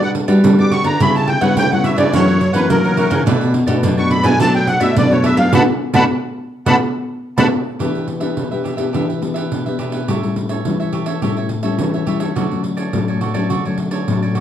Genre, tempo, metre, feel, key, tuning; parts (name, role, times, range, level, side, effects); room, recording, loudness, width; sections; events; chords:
samba and choro; 106 BPM; 4/4; straight; B minor, E minor from 7.8 s; A4 = 442 Hz
musette accordion; melody; 0.0-7.5 s; A#4 to D6; -17 LUFS; equal
cavaquinho; accompaniment; 0.0-14.4 s; D4 to F#5; -26 LUFS; right 6 dB
nylon-string guitar; accompaniment; 0.0-14.4 s; F#2 to G4; -19 LUFS; left 4 dB
nylon-string guitar; bass; 0.0-7.5 s; B2 to G3; -17 LUFS; equal
pandeiro; percussion; 0.0-14.4 s; -20 LUFS; right 4 dB
moderate large studio reverb, RT60 1.0 s; dark, warm production; -14 LUFS; side -10 dB against mid
0.0-7.8 A section; 7.8-14.4 B section
accordion solo 0.0-7.8; band accent 5.5-7.8
0.0 Gmaj7; 1.0 C#m7b5; 2.1 F#7; 3.3 Bm7; 7.8 Em7; 10.1 A7; 12.4 Dmaj7